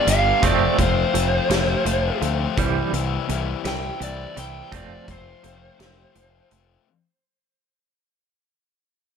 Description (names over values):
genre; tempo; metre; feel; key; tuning
quiet-loud alternative rock; 56 BPM (dotted quarters); 6/8; straight; unclear; A4 = 440 Hz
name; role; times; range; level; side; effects
lead guitar through a small cranked amp; melody; 0.0-6.5 s; C5 to G5; -24 LUFS; right 2 dB; overdrive
twangy electric guitar; arpeggios; 0.0-6.8 s; G2 to C4; -27 LUFS; right 10 dB; tremolo
thick fuzz guitar; riff; 0.0-6.9 s; C3 to G4; -26 LUFS; left 11 dB; distortion
growling fingered electric bass; bass; 0.1-6.8 s; F1 to D2; -26 LUFS; equal; overdrive
loose indie drum kit; drums; 0.1-6.7 s; hi-hat, kick drum, snare drum; -26 LUFS; equal; none
room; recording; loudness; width
light reverb, studio ambience; none; -19 LUFS; side -7 dB against mid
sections
0.0-6.9 A section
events
fade-out 0.0-6.9; lead electric guitar solo 0.0-6.9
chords
0.4 F; 2.6 C; 4.7 F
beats
| 0.42 1.49 | 2.57 3.64 | 4.72 5.79